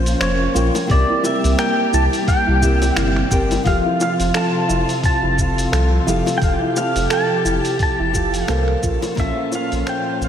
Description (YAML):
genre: sunset chillout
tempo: 87 BPM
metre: 4/4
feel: swing 57% on 16ths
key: F major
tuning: A4 = 440 Hz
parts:
  - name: pedal steel guitar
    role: melody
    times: 0.0-10.3 s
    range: C5 to A5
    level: -23 LUFS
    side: equal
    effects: lush chorus, diffuse ambient delay
  - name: nylon-string guitar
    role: accompaniment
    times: 0.0-10.3 s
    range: F3 to G5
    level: -24 LUFS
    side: moving between left 2 dB and right 5 dB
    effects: auto-pan, tape echo
  - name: dark studio string section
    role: sustained chords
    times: 0.0-10.3 s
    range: Bb2 to G4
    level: -23 LUFS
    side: left 1 dB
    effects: none
  - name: warm sub bass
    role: bass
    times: 0.0-10.3 s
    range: F1 to C2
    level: -20 LUFS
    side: equal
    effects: none
  - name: dusty soul sampler-style drum kit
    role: drums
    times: 0.1-10.3 s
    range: finger snaps, hi-hat, shaker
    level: -27 LUFS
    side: equal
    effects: studio reverb
  - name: soft round pluck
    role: arpeggios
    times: 0.2-10.3 s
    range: E4 to G5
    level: -26 LUFS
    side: right 2 dB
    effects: chorus, tape echo
  - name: bongos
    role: percussion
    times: 0.7-9.7 s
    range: none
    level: -29 LUFS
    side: left 4 dB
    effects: none
  - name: electronic kick drum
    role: drums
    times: 0.9-9.3 s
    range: none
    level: -21 LUFS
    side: equal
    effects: studio reverb
  - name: drifting glass-harmonics texture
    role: texture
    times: 4.7-10.3 s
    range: A4 to A5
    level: -32 LUFS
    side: right 4 dB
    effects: chorus, built-in reverb
room: wet lush hall reverb, RT60 2.2 s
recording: dreamy mix soaked in reverb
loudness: -15 LUFS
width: side -9 dB against mid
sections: 0.0-10.3 A section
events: fade-out 7.3-10.3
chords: 0.0 Bbmadd9; 0.9 C7; 3.7 Fmaj7; 8.8 Bbmadd9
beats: 0.21 | 0.90 1.58 2.27 2.96 | 3.65 4.34 5.03 5.72 | 6.41 7.10 7.79 8.48 | 9.17 9.86